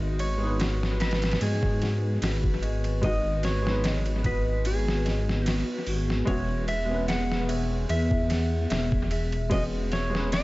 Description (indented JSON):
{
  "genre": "trip hop",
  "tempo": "74 BPM",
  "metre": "4/4",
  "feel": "swing 54% on 16ths",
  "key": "G# minor",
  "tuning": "A4 = 438 Hz",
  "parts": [
    { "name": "clear upright piano", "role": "accompaniment", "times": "0.0-10.4 s", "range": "G#3 to B4", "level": "-34 LUFS", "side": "equal", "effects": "tremolo, tape echo" },
    { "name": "warbly tape-like pad", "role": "sustained chords", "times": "0.7-10.4 s", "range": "B3 to B4", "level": "-35 LUFS", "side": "equal", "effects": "chorus, built-in reverb, vintage 12-bit sampler grit" },
    { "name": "felt-muted upright piano", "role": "arpeggios", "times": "0.0-10.4 s", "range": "F#4 to E5", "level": "-37 LUFS", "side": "left 3 dB", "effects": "low-pass filter, tape echo" },
    { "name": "dark detuned saw bass", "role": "bass", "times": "0.0-10.4 s", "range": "E1 to G#2", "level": "-27 LUFS", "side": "equal", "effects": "none" },
    { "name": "clean lap steel guitar", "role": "melody", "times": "0.2-10.4 s", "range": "G#4 to F#5", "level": "-32 LUFS", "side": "equal", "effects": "tape echo" },
    { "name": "boom bap sampler-style drum kit", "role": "drums", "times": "0.2-10.4 s", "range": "hi-hat, kick drum, ride cymbal, snare drum", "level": "-30 LUFS", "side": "equal", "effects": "overdrive, small room ambience, analog delay" }
  ],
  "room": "digital ambience",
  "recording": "echo-heavy mix, vinyl crackle, nothing above 7.8 kHz",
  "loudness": "-24 LUFS",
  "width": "side -20 dB against mid",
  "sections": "0.0-10.4 A section",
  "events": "none",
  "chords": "0.0 G#m7; 6.3 E6"
}